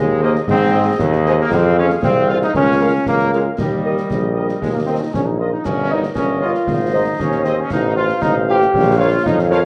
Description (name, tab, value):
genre	military-style march for wind band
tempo	116 BPM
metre	2/4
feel	straight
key	Ab major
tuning	A4 = 440 Hz
part	mellow woodwind section	second line	0.0-9.7 s	Ab4 to F5	-27 LUFS	equal	none
part	bright trombone section	sustained chords	0.0-9.6 s	F3 to G4	-21 LUFS	equal	none
part	clear tuba	bass	0.0-9.7 s	G1 to Ab2	-20 LUFS	equal	none
part	dark trumpet section	melody	0.2-9.6 s	Eb5 to F5	-31 LUFS	equal	none
part	mellow French horn section	accompaniment	0.2-9.6 s	F4 to Db5	-25 LUFS	equal	none
part	concert snare drum, concert bass drum and clash cymbals	drums	0.4-9.6 s	none	-27 LUFS	equal	none
room	moderate large studio reverb, RT60 0.9 s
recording	worn, warbling old tape, cassette tape, warbly pitch drift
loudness	-16 LUFS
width	mono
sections	0.0-9.7 A section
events	none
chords	0.0 Ab; 1.5 Fm; 2.5 Bbm/Db; 3.6 Eb; 5.6 Eb7/G; 6.7 Ab; 7.7 F/A; 8.7 Bbm